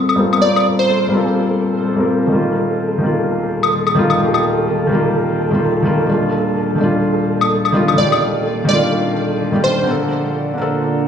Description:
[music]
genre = future garage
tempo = 127 BPM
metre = 4/4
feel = swing 61% on 16ths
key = unclear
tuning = A4 = 438 Hz
[part]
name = felt-muted upright piano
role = accompaniment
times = 0.0-11.1 s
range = D3 to Bb4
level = -16 LUFS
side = left 1 dB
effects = low-pass filter, ping-pong delay
[part]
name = dark analog pad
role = sustained chords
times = 0.0-11.1 s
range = Eb3 to A5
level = -25 LUFS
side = right 2 dB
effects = chorus
[part]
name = flickering grainy texture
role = texture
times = 0.0-11.1 s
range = A4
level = -23 LUFS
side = right 1 dB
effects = built-in reverb
[part]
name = claves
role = drums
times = 0.1-0.6, 3.6-4.4, 7.4-8.2 s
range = none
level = -18 LUFS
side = left 3 dB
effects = overdrive, small room reverb
[part]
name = plucky unison lead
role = melody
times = 0.4-1.3, 8.0-9.9 s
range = C5 to D5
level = -20 LUFS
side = right 2 dB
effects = analog chorus, cassette tape, dub echo
[sound]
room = moderate lush hall reverb, RT60 2.4 s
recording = played on a big sound system in a bare room, large studio reverb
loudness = -14 LUFS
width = side -8 dB against mid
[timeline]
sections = 0.0-11.1 A section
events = filter sweep on analog synth pad 0.0-11.1; filter sweep on felt piano 0.0-11.1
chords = 0.0 Gm11; 2.3 F9sus4; 6.1 Ebmaj9; 9.9 Bbmaj7

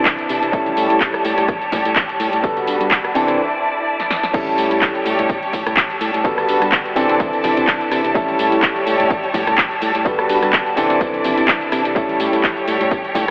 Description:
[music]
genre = filtered disco house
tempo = 126 BPM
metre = 4/4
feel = swing 55% on 16ths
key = A mixolydian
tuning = A4 = 440 Hz
[part]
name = warm concert grand piano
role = accompaniment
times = 0.0-13.3 s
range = E3 to A4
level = -22 LUFS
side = equal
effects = phaser, sidechain pumping, low-pass filter
[part]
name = rich chamber violin section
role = sustained chords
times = 0.0-13.3 s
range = E4 to A5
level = -23 LUFS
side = equal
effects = sidechain pumping, low-pass filter
[part]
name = fingered electric bass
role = bass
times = 0.0-13.3 s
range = G1 to C3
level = -29 LUFS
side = equal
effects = tube saturation, sidechain pumping, low-pass filter
[part]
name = electronic kick drum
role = drums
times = 0.1-13.3 s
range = none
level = -26 LUFS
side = equal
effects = none
[part]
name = punchy analog drum machine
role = drums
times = 0.1-13.3 s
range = crash cymbal, handclaps, hi-hat, rim click, snare drum, tambourine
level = -24 LUFS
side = equal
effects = sidechain pumping on hats, sidechain pumping on perc, sidechain pumping on cymbals
[part]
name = tambourine and congas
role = percussion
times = 0.1-13.3 s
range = none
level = -36 LUFS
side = equal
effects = none
[sound]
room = wet huge ambient reverb, RT60 4.8 s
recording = dreamy mix soaked in reverb, telephone sound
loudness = -17 LUFS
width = mono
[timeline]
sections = 0.0-4.3 A section; 4.3-13.3 B section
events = filter sweep 0.0-4.3; break 3.4-4.3; drum fill 4.0-4.3; drop 4.3-13.3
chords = 0.0 C69; 0.5 A7; 2.4 Gmaj9; 3.2 C69; 4.3 A7; 6.2 Gmaj9; 7.0 C69; 8.2 A7; 10.1 Gmaj9; 10.8 C69; 12.0 A7

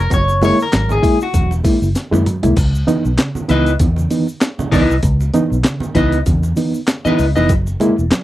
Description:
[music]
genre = funk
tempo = 98 BPM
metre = 4/4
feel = swing 56% on 16ths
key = C# dorian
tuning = A4 = 439 Hz
[part]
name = electric guitar at the edge of break-up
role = accompaniment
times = 0.0-7.5 s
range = E4 to D#5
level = -17 LUFS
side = left 2 dB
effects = wide subtle chorus
[part]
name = vintage muted fingered electric bass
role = bass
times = 0.0-8.1 s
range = E1 to F#2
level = -16 LUFS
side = equal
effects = none
[part]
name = reed electric piano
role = stabs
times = 0.1-8.2 s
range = C#3 to E4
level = -17 LUFS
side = right 1 dB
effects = overdrive, fast tremolo
[part]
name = breakbeat sampler-style drum kit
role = drums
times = 0.1-8.2 s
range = crash cymbal, handclaps, hi-hat, kick drum, snare drum, toms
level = -17 LUFS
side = equal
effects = none
[part]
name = congas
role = percussion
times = 0.1-8.2 s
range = none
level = -27 LUFS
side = right 2 dB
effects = none
[part]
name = egg shaker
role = percussion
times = 0.1-8.2 s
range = none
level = -38 LUFS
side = left 3 dB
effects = none
[sound]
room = little or no reverb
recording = dry, close 1970s-style studio recording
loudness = -13 LUFS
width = side -15 dB against mid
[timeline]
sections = 0.0-2.6 A section; 2.6-8.2 B section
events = clean electric guitar solo 0.0-2.6; drum fill 2.0-2.6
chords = 0.0 F#9; 2.6 C#m9; 7.5 F#9

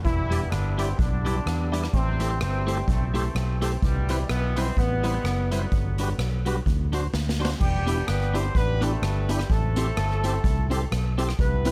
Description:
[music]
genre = ska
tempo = 127 BPM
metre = 4/4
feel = swing 57% on 8ths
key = E minor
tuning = A4 = 440 Hz
[part]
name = warm horn section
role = melody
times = 0.0-11.7 s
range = B2 to C5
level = -33 LUFS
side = equal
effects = tape echo
[part]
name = vintage muted fingered electric bass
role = bass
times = 0.0-11.7 s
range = E1 to E2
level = -28 LUFS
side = equal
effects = none
[part]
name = street-band drum kit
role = drums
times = 0.0-11.7 s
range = crash cymbal, hi-hat, kick drum, rim click, snare drum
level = -30 LUFS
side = equal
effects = none
[part]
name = clean electric guitar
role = accompaniment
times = 0.3-11.7 s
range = G3 to C5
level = -35 LUFS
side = equal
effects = none
[part]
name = tonewheel organ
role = stabs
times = 0.3-11.7 s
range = C4 to D5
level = -36 LUFS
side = equal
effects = chorus vibrato, fast rotary speaker
[sound]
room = studio ambience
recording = none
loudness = -25 LUFS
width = mono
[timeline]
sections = 0.0-7.6 A section; 7.6-11.7 A section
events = drum fill 7.1-7.6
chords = 0.0 Em7; 1.9 Am7; 3.8 Cmaj7; 5.7 Gmaj7; 6.7 D7; 7.6 Em7; 9.5 Am7

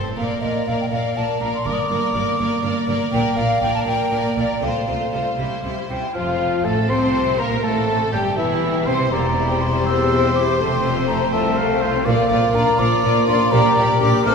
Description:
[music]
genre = quick classical-period movement for symphony orchestra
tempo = 81 BPM (dotted quarters)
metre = 6/8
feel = straight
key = F major from 3.1 s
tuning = A4 = 440 Hz
[part]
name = rich chamber violin section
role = melody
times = 0.0-14.3 s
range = E4 to D5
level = -27 LUFS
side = left 4 dB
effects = none
[part]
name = rich studio violin section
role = second line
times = 0.0-14.3 s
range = A3 to C5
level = -28 LUFS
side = left 1 dB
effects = none
[part]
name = rich chamber viola section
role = accompaniment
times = 0.0-14.3 s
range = E3 to C4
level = -26 LUFS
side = right 2 dB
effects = none
[part]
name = bright studio cello section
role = bass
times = 0.0-14.3 s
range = C2 to C3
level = -27 LUFS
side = right 2 dB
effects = none
[part]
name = rich chamber double bass section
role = bass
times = 0.0-14.3 s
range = E1 to C2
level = -26 LUFS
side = right 2 dB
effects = none
[part]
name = concert flute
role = second line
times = 0.2-14.3 s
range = D5 to F6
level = -23 LUFS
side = left 1 dB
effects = none
[part]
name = clear oboe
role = second line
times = 6.1-14.3 s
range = C5 to C6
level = -26 LUFS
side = right 1 dB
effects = none
[part]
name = dark clarinet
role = second line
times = 6.2-14.3 s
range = E4 to C5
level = -27 LUFS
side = left 2 dB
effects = none
[part]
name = dark bassoon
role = accompaniment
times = 6.2-14.3 s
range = E3 to C4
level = -25 LUFS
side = left 1 dB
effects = none
[part]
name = mellow French horn section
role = sustained chords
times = 6.2-14.1 s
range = E3 to Bb4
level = -26 LUFS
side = left 3 dB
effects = none
[sound]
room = wet concert hall reverb, RT60 2.4 s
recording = recorded in a church or concert hall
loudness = -17 LUFS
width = side -5 dB against mid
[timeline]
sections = 0.0-6.2 A section; 6.2-14.3 B section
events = none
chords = 0.2 Bb; 1.7 Gm; 3.1 Gm/Bb; 4.6 F/C; 5.4 C; 6.2 F; 7.6 C; 9.1 C7/E; 10.6 F; 12.1 Bb; 13.5 Gm/Bb

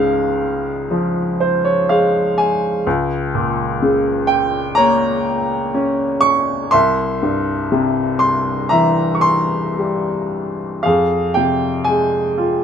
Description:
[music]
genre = classical, lyrical solo piano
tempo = 55-63 BPM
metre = 4/4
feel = rubato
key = unclear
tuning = A4 = 441 Hz
[part]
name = clear upright piano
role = solo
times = 0.0-12.6 s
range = C2 to Db6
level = -15 LUFS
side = equal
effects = none
[sound]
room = light reverb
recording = minimal, uncompressed stereo recording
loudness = -15 LUFS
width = side -8 dB against mid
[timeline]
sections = 0.0-10.9 A section; 10.9-12.6 B section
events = upright piano fill 0.9-2.9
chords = 0.0 Db; 2.9 Gdim/Db; 6.7 C; 10.9 Fmadd9

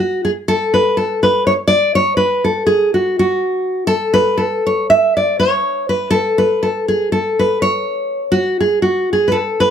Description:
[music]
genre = balkan folk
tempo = 242 BPM (eighths)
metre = 9/8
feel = straight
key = A major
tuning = A4 = 440 Hz
[part]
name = nylon-string guitar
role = solo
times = 0.0-9.7 s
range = F#4 to E5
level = -13 LUFS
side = equal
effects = none
[sound]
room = moderate small room reverb, RT60 0.5 s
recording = none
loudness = -13 LUFS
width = side -8 dB against mid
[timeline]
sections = 0.0-9.7 A section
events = none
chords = none

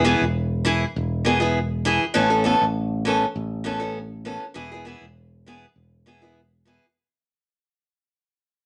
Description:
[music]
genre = highlife guitar band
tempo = 100 BPM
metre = 4/4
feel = straight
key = unclear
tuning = A4 = 440 Hz
[part]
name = picked steel-string acoustic guitar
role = accompaniment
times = 0.0-6.9 s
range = E3 to A4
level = -23 LUFS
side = equal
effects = none
[part]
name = modern bright fingered electric bass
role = bass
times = 0.0-6.8 s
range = E1 to A1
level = -28 LUFS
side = equal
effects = none
[sound]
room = moderate studio reverb, RT60 0.7 s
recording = none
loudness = -22 LUFS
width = mono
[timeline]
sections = 0.0-7.0 A section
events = fade-out 0.0-7.0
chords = 0.0 E; 2.1 Aadd9; 4.6 E

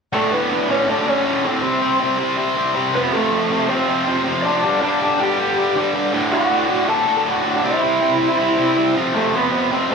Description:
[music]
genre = punk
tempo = 160 BPM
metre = 4/4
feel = straight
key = unclear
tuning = A4 = 440 Hz
[part]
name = lead guitar through a small cranked amp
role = melody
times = 0.1-9.9 s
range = A3 to A5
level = -19 LUFS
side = equal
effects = overdrive, slapback echo
[part]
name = tight distorted guitar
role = riff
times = 0.1-9.9 s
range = D2 to C4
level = -19 LUFS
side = equal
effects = distortion, slapback echo
[sound]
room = moderate club reverb, RT60 0.7 s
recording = live gig heard through the venue's PA, club reverb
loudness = -16 LUFS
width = side -5 dB against mid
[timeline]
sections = 0.1-9.9 A section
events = none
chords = 0.1 D5; 1.6 C5; 2.9 F; 4.6 G5; 6.1 D; 7.6 C; 9.0 F

